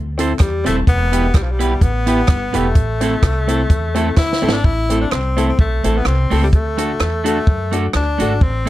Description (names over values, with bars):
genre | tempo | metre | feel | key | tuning
ska | 127 BPM | 4/4 | swing 55% on 8ths | A minor, A dorian from 4.6 s | A4 = 440 Hz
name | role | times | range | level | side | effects
upright bass | bass | 0.0-8.7 s | D#1 to F#2 | -19 LUFS | equal | none
clean electric guitar | accompaniment | 0.2-8.7 s | A3 to C5 | -21 LUFS | right 6 dB | none
warm upright piano | stabs | 0.2-8.7 s | B3 to A4 | -24 LUFS | left 4 dB | plate reverb
compact cocktail drum kit | drums | 0.2-8.7 s | hi-hat, kick drum, rim click, snare drum | -15 LUFS | equal | none
clear tenor saxophone | melody | 0.4-8.7 s | F3 to E4 | -21 LUFS | left 2 dB | slapback echo, plate reverb
group handclap | percussion | 0.4-8.1 s | none | -32 LUFS | right 9 dB | slapback echo
room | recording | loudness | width
light reverb | none | -14 LUFS | side -15 dB against mid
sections
0.0-4.6 A section; 4.6-8.7 B section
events
drum fill 4.2-4.6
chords
0.0 Am; 0.9 Em; 2.8 Am; 6.5 D